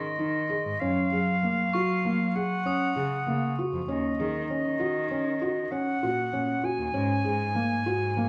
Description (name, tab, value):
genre	contemporary instrumental, chamber music in an uneven meter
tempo	98 BPM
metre	5/4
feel	straight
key	Ab mixolydian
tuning	A4 = 439 Hz
part	reedy silver concert flute	melody	0.0-8.3 s	Eb5 to Ab5	-32 LUFS	equal	none
part	felt-muted upright piano	arpeggios	0.0-8.3 s	Bb3 to Ab4	-32 LUFS	equal	none
part	crotales	texture	0.0-4.2 s	C6 to Eb6	-41 LUFS	equal	none
part	dark cello	bass	0.2-8.3 s	Eb2 to Gb3	-34 LUFS	equal	none
room	wet recital hall reverb, RT60 1.3 s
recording	none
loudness	-28 LUFS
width	mono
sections	0.0-8.3 A section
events	none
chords	0.0 Absus4; 0.8 Gbmaj9; 3.9 Ebm7; 7.0 Ab7sus4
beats	0.20 | 0.82 1.43 2.04 2.66 3.27 | 3.89 4.50 5.11 5.73 6.34 | 6.95 7.57 8.18